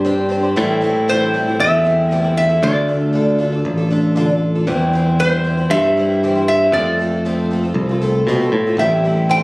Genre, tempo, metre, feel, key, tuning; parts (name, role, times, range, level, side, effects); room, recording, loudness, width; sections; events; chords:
folk; 117 BPM; 4/4; straight; A4 = 439 Hz
metal-body resonator slide guitar; melody; 0.0-9.4 s; C5 to G5; -16 LUFS; equal
picked twelve-string acoustic guitar; accompaniment; 0.0-9.4 s; A2 to C5; -20 LUFS; left 1 dB
modern bright picked electric bass; bass; 0.0-9.4 s; A1 to B2; -17 LUFS; equal
mandolin; second line; 8.8-9.4 s; G4 to C5; -24 LUFS; equal
light reverb; recorded on a phone in the room, club reverb, compression; -14 LUFS; side -24 dB against mid
0.6-9.4 A section
0.0 Csus2; 0.6 Am7; 2.6 Dm; 4.7 C/E; 6.7 F; 8.8 Am7